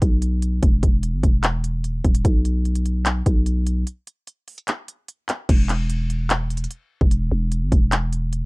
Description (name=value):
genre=hip hop, trap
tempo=148 BPM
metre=4/4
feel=half-time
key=E harmonic minor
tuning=A4 = 439 Hz
part: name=growling 808-style bass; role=bass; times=0.0-8.5 s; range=D#1 to B1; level=-21 LUFS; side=equal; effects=none
part: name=trap drum kit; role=drums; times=0.0-8.4 s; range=crash cymbal, handclaps, hi-hat, kick drum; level=-19 LUFS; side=equal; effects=none
room=little or no reverb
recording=dark, warm production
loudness=-19 LUFS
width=side -27 dB against mid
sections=0.0-5.5 A section; 5.5-8.5 B section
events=break 3.9-5.5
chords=none